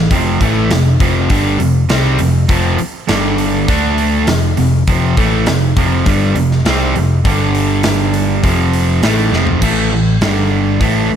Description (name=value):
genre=hard rock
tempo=101 BPM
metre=4/4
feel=straight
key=unclear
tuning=A4 = 440 Hz
part: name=cranked stack guitar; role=riff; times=0.0-11.1 s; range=F2 to D4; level=-16 LUFS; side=right 8 dB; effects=overdrive, spring reverb
part: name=sludgy distorted guitar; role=riff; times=0.0-11.1 s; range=F2 to D4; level=-18 LUFS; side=left 11 dB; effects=overdrive
part: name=overdriven picked electric bass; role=bass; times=0.0-11.1 s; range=F1 to D2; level=-17 LUFS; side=left 1 dB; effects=none
part: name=big rock drum kit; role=drums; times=0.1-10.9 s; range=crash cymbal, hi-hat, kick drum, snare drum, toms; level=-18 LUFS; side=equal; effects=none
room=studio reverb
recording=none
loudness=-11 LUFS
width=side -9 dB against mid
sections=0.0-9.6 A section; 9.6-11.2 B section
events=drum fill 9.3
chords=0.1 F5; 3.1 G5; 3.7 D5; 4.3 F5; 7.3 G5; 8.4 F5; 9.6 A5; 10.2 G5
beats=| 0.11 0.71 1.30 1.90 | 2.49 3.09 3.68 4.28 | 4.87 5.47 6.06 6.66 | 7.25 7.84 8.44 9.03 | 9.63 10.22 10.81